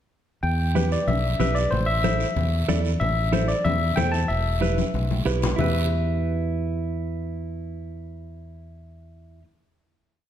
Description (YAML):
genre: latin, cumbia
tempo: 186 BPM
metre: 4/4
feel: straight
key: E minor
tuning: A4 = 440 Hz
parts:
  - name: barky tine electric piano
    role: melody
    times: 0.4-9.4 s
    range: C5 to A5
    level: -28 LUFS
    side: left 2 dB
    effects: overdrive
  - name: fingered electric bass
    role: bass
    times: 0.4-9.4 s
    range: E1 to E2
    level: -25 LUFS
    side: equal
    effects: none
  - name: guiro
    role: percussion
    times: 0.4-5.7 s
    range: none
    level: -38 LUFS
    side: right 7 dB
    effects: none
  - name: semi-hollow electric guitar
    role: accompaniment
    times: 0.8-9.4 s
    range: E4 to D5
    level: -29 LUFS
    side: right 7 dB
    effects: none
  - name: congas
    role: percussion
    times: 0.8-5.7 s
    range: none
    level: -28 LUFS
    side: left 5 dB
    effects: none
room: wet recital hall reverb, RT60 1.4 s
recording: none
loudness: -21 LUFS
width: side -10 dB against mid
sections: 0.4-5.6 A section; 5.6-8.2 final chord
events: drum fill 4.6-5.6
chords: 0.4 Em; 1.7 Am; 4.3 Em